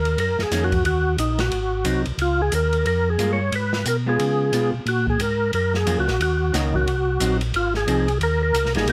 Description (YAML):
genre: soul jazz organ trio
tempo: 180 BPM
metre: 4/4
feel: swing 62% on 8ths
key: unclear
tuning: A4 = 440 Hz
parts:
  - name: percussive tonewheel organ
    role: melody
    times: 0.0-8.9 s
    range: Eb4 to Db5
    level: -25 LUFS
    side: equal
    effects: slow rotary speaker, overdrive, chorus vibrato
  - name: mellow tonewheel organ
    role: bass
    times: 0.0-8.9 s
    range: Ab1 to Db3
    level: -26 LUFS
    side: equal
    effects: chorus vibrato, slow rotary speaker
  - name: open jazz drum kit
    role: drums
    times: 0.1-8.9 s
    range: hi-hat, kick drum, ride cymbal, snare drum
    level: -31 LUFS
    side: equal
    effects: none
  - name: vintage hollow-body jazz guitar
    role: accompaniment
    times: 0.5-8.9 s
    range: Eb3 to Gb4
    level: -28 LUFS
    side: equal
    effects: none
room: light reverb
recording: none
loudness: -21 LUFS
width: mono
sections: 0.0-8.9 A section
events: none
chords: 0.0 Gb6; 0.8 Ebm; 1.5 Ab7; 2.2 Db6; 3.5 Abm; 4.2 Db7; 4.9 Gbmaj7; 6.2 Ebm7; 6.9 Ebm6; 7.5 Dbmaj9